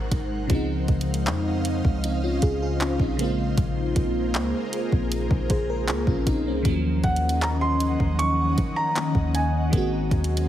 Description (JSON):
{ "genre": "contemporary R&B", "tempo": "78 BPM", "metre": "4/4", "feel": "straight", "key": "Eb dorian", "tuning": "A4 = 440 Hz", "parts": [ { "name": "FM electric piano with soft pad layer", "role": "accompaniment", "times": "0.0-10.5 s", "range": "C3 to C5", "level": "-27 LUFS", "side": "left 1 dB", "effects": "chorus, phaser" }, { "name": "ethereal airy pad", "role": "sustained chords", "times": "0.0-10.5 s", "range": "Db3 to Gb5", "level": "-30 LUFS", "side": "left 1 dB", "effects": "ensemble chorus, built-in reverb, sidechain pumping" }, { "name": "soft 808-style bass", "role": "bass", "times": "0.0-10.5 s", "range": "Ab1 to Eb3", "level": "-27 LUFS", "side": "equal", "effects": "none" }, { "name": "smooth R&B drum kit", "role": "drums", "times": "0.1-10.5 s", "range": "handclaps, hi-hat, kick drum", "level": "-25 LUFS", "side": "equal", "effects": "none" }, { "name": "dark concert grand piano", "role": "melody", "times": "7.0-10.5 s", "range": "Gb5 to Db6", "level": "-27 LUFS", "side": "right 1 dB", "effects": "none" } ], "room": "light reverb", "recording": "heavily compressed radio sound, multiband compression", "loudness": "-21 LUFS", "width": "side -12 dB against mid", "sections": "0.0-10.5 A section", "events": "none", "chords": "0.0 Ab9; 0.5 Dbmaj9; 6.7 Ebm9; 9.7 Ab9" }